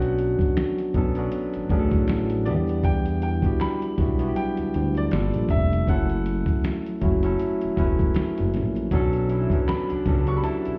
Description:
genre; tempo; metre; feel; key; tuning
R&B, neo-soul; 79 BPM; 4/4; swing 57% on 16ths; B minor; A4 = 440 Hz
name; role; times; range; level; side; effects
clear baby grand piano; melody; 0.0-10.8 s; D5 to C#6; -35 LUFS; equal; none
barky tine electric piano; accompaniment; 0.0-10.8 s; F#3 to B4; -28 LUFS; equal; none
fat analog bass; bass; 0.0-10.7 s; E1 to E2; -27 LUFS; equal; none
dusty soul sampler-style drum kit; drums; 0.0-10.8 s; hi-hat, kick drum, snare drum; -27 LUFS; equal; none
maracas and finger snaps; percussion; 0.0-10.8 s; none; -50 LUFS; equal; none
clear horn section; stabs; 9.3-10.7 s; B2 to E4; -36 LUFS; equal; none
room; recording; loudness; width
light reverb; heard muffled through a wall, stone room reverb, EQ; -23 LUFS; mono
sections
0.0-10.8 A section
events
none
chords
0.0 Bm7; 2.5 Em7; 5.1 Gm7; 5.9 F#m7; 8.9 Bm7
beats
0.56 1.32 2.08 | 2.84 3.60 4.36 5.12 | 5.88 6.64 7.40 8.16 | 8.92 9.68 10.44

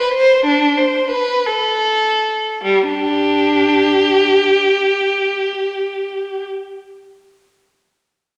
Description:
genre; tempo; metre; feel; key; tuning
classical, baroque-style suite movement for unaccompanied violin; 49-67 BPM (dotted quarters); 12/8; rubato; G major; A4 = 440 Hz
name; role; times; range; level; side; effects
rich violin; solo; 0.0-6.4 s; G3 to C5; -16 LUFS; equal; none
room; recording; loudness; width
wet scoring stage reverb, RT60 1.5 s; none; -16 LUFS; mono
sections
0.0-2.6 A section; 2.6-7.3 B section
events
slowing down 0.0-2.6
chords
none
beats
0.46 1.46 | 2.63 3.81 4.97 6.13

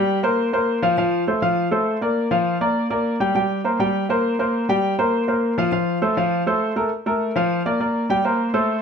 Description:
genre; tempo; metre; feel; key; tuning
latin; 202 BPM; 4/4; straight; unclear; A4 = 438 Hz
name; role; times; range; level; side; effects
warm grand piano; solo; 0.0-8.8 s; F3 to G5; -18 LUFS; equal; none
room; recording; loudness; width
moderate studio reverb, RT60 0.8 s; none; -18 LUFS; side -6 dB against mid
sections
0.0-6.9 A section; 6.9-8.8 B section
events
none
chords
0.0 C5; 1.0 F; 2.2 Gm7; 3.4 Gmadd11; 4.5 C5; 5.7 F; 6.9 Bb5; 7.5 Bb/F; 8.1 Gmadd11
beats
0.08 0.38 0.68 | 0.97 1.27 1.57 1.87 | 2.16 2.46 2.76 3.06 | 3.35 3.65 3.94 4.24 | 4.54 4.83 5.13 5.43 | 5.72 6.02 6.32 6.61 | 6.91 7.21 7.50 7.80 | 8.09 8.39 8.69

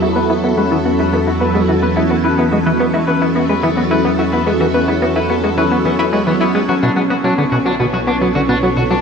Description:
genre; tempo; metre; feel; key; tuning
ambient, sequencer-driven space music; 108 BPM; 4/4; straight; unclear; A4 = 440 Hz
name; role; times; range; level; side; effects
phased string machine; sustained chords; 0.0-9.0 s; F#3 to E5; -17 LUFS; right 1 dB; ensemble chorus, phaser
electric guitar at the edge of break-up; arpeggios; 0.0-9.0 s; B3 to B4; -22 LUFS; left 3 dB; auto-pan, low-pass filter, ping-pong delay
plucky analog bass; riff; 0.0-8.9 s; B2 to E4; -17 LUFS; equal; wide subtle chorus, ping-pong delay
analog drone; bass; 0.0-9.0 s; B1 to E2; -23 LUFS; equal; chorus, tube saturation
pulsing gated texture; texture; 0.0-9.0 s; C#4 to C#6; -22 LUFS; left 1 dB; chorus, built-in reverb
room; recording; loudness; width
wet plate reverb, RT60 3.4 s; echo-heavy mix; -13 LUFS; side -6 dB against mid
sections
0.0-9.0 A section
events
filter sweep on clean electric guitar 0.0-9.0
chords
0.0 Esus2; 6.7 Bmadd9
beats
| 0.02 0.57 1.13 1.69 | 2.24 2.80 3.35 3.91 | 4.46 5.02 5.57 6.13 | 6.68 7.24 7.80 8.35 | 8.91

